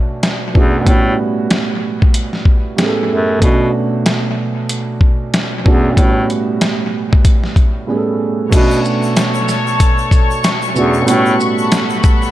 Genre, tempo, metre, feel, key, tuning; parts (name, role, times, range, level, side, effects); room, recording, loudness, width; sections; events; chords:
hip hop, boom-bap hip-hop; 94 BPM; 4/4; swing 57% on 16ths; B minor; A4 = 440 Hz
dark concert grand piano; accompaniment; 0.0-12.3 s; A2 to A4; -17 LUFS; right 3 dB; cassette tape, high-pass filter, low-pass filter, dub echo
dusty soul sampler-style drum kit; drums; 0.2-12.2 s; crash cymbal, hi-hat, kick drum, shaker, snare drum; -14 LUFS; equal; dub echo
bright bass clarinet; bass; 0.6-11.4 s; E2 to B2; -16 LUFS; left 1 dB
warm studio string section; sustained chords; 8.5-12.3 s; A4 to C#6; -18 LUFS; left 3 dB; high-pass filter, low-pass filter
egg shaker; percussion; 8.5-12.3 s; -34 LUFS; left 7 dB
light reverb, small room ambience; echo-heavy mix; -12 LUFS; side -14 dB against mid
0.0-8.5 A section; 8.5-12.3 B section
break 7.9-8.5
0.0 Bm9; 0.9 A13; 3.4 Bm9; 6.0 A13; 8.5 Bm9; 11.1 A13